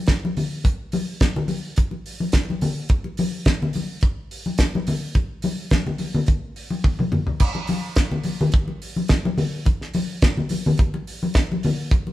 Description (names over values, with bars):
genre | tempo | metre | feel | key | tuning
disco | 106 BPM | 4/4 | straight | none | none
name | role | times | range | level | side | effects
damped 70s drum kit | drums | 0.1-12.1 s | crash cymbal, hi-hat, kick drum, snare drum, toms | -21 LUFS | equal | none
congas | percussion | 0.2-12.1 s | none | -24 LUFS | left 2 dB | none
room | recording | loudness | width
moderate stone room reverb, RT60 1.2 s | band playing live in one room | -20 LUFS | side -15 dB against mid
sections
0.0-7.4 A section; 7.4-12.1 B section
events
drum fill 6.8-7.4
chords
none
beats
0.08 | 0.65 1.21 1.77 2.34 | 2.90 3.46 4.03 4.59 | 5.16 5.72 6.28 6.85 | 7.41 7.97 8.54 9.10 | 9.66 10.22 10.79 11.35 | 11.91